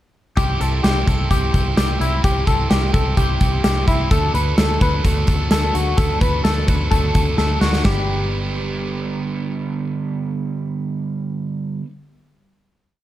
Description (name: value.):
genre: jangly indie pop.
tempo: 128 BPM.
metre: 4/4.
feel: straight.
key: G major.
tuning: A4 = 439 Hz.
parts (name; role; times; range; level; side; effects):
biting overdriven guitar; accompaniment; 0.4-11.9 s; G2 to B4; -24 LUFS; right 4 dB; none.
direct-recorded clean electric guitar; arpeggios; 0.4-9.2 s; E4 to B4; -23 LUFS; left 2 dB; analog chorus.
vintage muted fingered electric bass; bass; 0.4-11.8 s; G1 to D2; -21 LUFS; equal; none.
big rock drum kit; drums; 0.4-8.0 s; hi-hat, kick drum, snare drum; -19 LUFS; equal; none.
room: little or no reverb.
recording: dark, warm production.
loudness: -17 LUFS.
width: side -13 dB against mid.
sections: 0.4-7.8 pre-chorus; 7.8-11.6 final chord.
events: drum fill 7.4-7.8.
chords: 0.4 C; 4.1 D; 7.8 G.